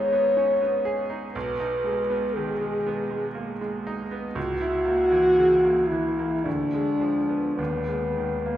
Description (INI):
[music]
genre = classical, romantic duo for French horn and grand piano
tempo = 52-61 BPM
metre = 3/4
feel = rubato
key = G# minor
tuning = A4 = 439 Hz
[part]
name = mellow French horn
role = melody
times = 0.0-8.6 s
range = B3 to C#5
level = -22 LUFS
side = left 1 dB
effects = none
[part]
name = bright grand piano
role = accompaniment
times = 0.0-8.6 s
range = D#1 to G#4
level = -29 LUFS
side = right 2 dB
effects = none
[sound]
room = wet recital hall reverb, RT60 1.5 s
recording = heard from further back in the room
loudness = -22 LUFS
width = side -12 dB against mid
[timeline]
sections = 0.0-8.6 A section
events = none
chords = 0.0 G#m; 1.4 G#m/B; 4.4 A#dim/C#; 6.5 Ddim7; 7.6 D#sus4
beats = 0.37 | 1.35 2.36 3.37 | 4.36 5.38 6.46 | 7.59